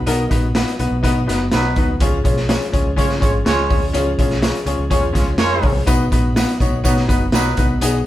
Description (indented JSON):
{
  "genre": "uptempo 1960s-style soul",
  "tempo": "124 BPM",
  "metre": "4/4",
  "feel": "straight",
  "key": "unclear",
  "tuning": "A4 = 440 Hz",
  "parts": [
    { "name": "mellow tonewheel organ", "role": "sustained chords", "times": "0.0-8.1 s", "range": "E#3 to D#4", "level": "-30 LUFS", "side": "equal", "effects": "none" },
    { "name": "vintage muted fingered electric bass", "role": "bass", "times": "0.0-8.0 s", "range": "F#1 to C#3", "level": "-22 LUFS", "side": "equal", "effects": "none" },
    { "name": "clear baby grand piano", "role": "accompaniment", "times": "0.1-8.0 s", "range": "B3 to C#5", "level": "-20 LUFS", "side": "left 2 dB", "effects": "none" },
    { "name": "raw garage drum kit", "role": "drums", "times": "0.1-7.9 s", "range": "hi-hat, kick drum, snare drum", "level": "-18 LUFS", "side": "equal", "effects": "none" },
    { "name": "warm horn section", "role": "second line", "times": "1.0-7.7 s", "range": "F#3 to C#5", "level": "-23 LUFS", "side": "right 2 dB", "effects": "none" },
    { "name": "tambourine", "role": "percussion", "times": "5.9-7.9 s", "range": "none", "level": "-32 LUFS", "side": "right 7 dB", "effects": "none" }
  ],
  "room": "light reverb",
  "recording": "band playing live in one room",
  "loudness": "-15 LUFS",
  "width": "side -14 dB against mid",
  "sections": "0.0-8.1 A section",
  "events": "none",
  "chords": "0.0 B; 2.0 C#; 5.9 B"
}